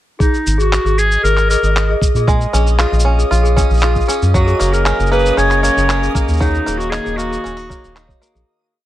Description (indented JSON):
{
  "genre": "folktronica",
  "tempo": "116 BPM",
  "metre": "4/4",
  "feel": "straight",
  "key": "unclear",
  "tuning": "A4 = 440 Hz",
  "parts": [
    { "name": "bright clarinet", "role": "melody", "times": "0.2-8.2 s", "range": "D#4 to C#5", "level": "-18 LUFS", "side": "equal", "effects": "tape echo" },
    { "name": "worn celesta", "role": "second line", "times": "0.2-8.5 s", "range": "F#4 to C#5", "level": "-22 LUFS", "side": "left 2 dB", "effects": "tape echo" },
    { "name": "electronic cabasa and handclaps", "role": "drums", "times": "0.2-8.5 s", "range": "none", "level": "-23 LUFS", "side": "equal", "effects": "none" },
    { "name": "electronic kick drum", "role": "drums", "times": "0.2-8.2 s", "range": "none", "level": "-16 LUFS", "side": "equal", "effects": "none" },
    { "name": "backwards swelling texture", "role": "texture", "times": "1.2-8.5 s", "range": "D#5 to D#6", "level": "-28 LUFS", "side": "equal", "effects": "built-in reverb" },
    { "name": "round analog bass", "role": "bass", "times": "0.5-8.4 s", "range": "D#1 to A#2", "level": "-16 LUFS", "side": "equal", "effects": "none" },
    { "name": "bluegrass banjo", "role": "arpeggios", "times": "2.3-8.9 s", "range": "F#3 to E#4", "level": "-21 LUFS", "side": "right 2 dB", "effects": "vintage 12-bit sampler grit, tape echo" },
    { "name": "warm string quartet", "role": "sustained chords", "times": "4.4-8.5 s", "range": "D#3 to E#5", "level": "-24 LUFS", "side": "equal", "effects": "none" }
  ],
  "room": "light reverb",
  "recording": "none",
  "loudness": "-12 LUFS",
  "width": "side -14 dB against mid",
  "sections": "0.2-8.5 groove",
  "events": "fade-out 5.7-8.5",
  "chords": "0.2 G#sus2; 2.3 A#m7; 4.3 F#; 6.4 D#madd9"
}